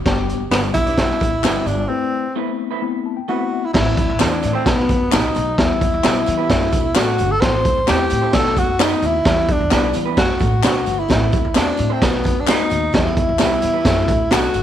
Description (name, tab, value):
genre	uptempo 1960s-style soul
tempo	130 BPM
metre	4/4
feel	straight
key	A dorian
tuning	A4 = 439 Hz
part	upright bass	bass	0.0-14.6 s	F#1 to E3	-23 LUFS	right 1 dB	none
part	mellow tine electric piano	accompaniment	0.1-14.6 s	E3 to A5	-24 LUFS	left 10 dB	medium stereo tremolo
part	raw garage drum kit	drums	0.1-14.6 s	crash cymbal, hi-hat, kick drum, snare drum	-18 LUFS	right 1 dB	none
part	tambourine and handclaps	percussion	0.3-14.6 s	none	-28 LUFS	left 6 dB	none
part	breathy tenor saxophone	melody	0.5-14.6 s	B3 to C5	-20 LUFS	equal	none
part	electric guitar through a small old amp	stabs	0.5-14.5 s	A3 to D5	-28 LUFS	right 9 dB	none
part	vibraphone with soft mallets	second line	3.3-14.6 s	B4 to C6	-31 LUFS	left 9 dB	none
room	light reverb, small room ambience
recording	1960s-style stereo with parts hard left and right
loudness	-15 LUFS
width	side -10 dB against mid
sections	0.0-3.7 A section; 3.7-14.6 B section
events	break 1.9-3.7; tine electric piano fill 2.8-3.7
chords	0.1 G; 1.9 Amadd9; 3.7 Am; 4.7 B7; 5.6 Em; 6.5 D/F#; 7.4 Am; 8.3 B7; 9.3 Em; 10.2 D/F#; 11.1 Am; 12.0 B7; 12.9 Em; 13.9 D/F#